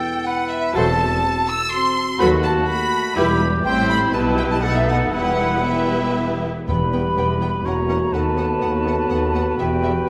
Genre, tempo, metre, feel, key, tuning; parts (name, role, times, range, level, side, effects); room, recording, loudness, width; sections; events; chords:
quick classical-period movement for symphony orchestra; 124 BPM; 3/4; rubato; E minor; A4 = 440 Hz
rich studio violin section; melody; 0.0-9.9 s; E5 to E6; -29 LUFS; equal
bright small flute group; second line; 0.0-10.1 s; E5 to E6; -28 LUFS; equal
clear oboe; second line; 0.0-10.1 s; F#4 to C#5; -28 LUFS; equal
dark French horn section; sustained chords; 0.0-10.1 s; G3 to A4; -28 LUFS; equal
warm studio viola section; accompaniment; 0.7-10.1 s; F#3 to F#4; -28 LUFS; equal
warm studio double bass section; bass; 0.7-10.0 s; E1 to D#2; -29 LUFS; equal
warm studio violin section; second line; 0.8-9.9 s; G4 to C5; -30 LUFS; equal
rich studio cello section; bass; 0.8-10.1 s; D#2 to B2; -28 LUFS; equal
warm clarinet; second line; 6.7-10.1 s; F#4 to G4; -29 LUFS; equal
timpani; percussion; 6.7-7.4 s; E2; -30 LUFS; equal
wet scoring stage reverb, RT60 1.9 s; -19 LUFS; mono
0.0-6.7 A section; 6.7-10.1 B section
0.0 Em; 0.7 F#m7b5/E; 2.2 B7/D#; 3.2 Em; 3.6 Am7; 4.1 Em/B; 4.6 B7; 5.1 Em; 7.7 F#7/E; 8.1 B7/D#; 9.6 Em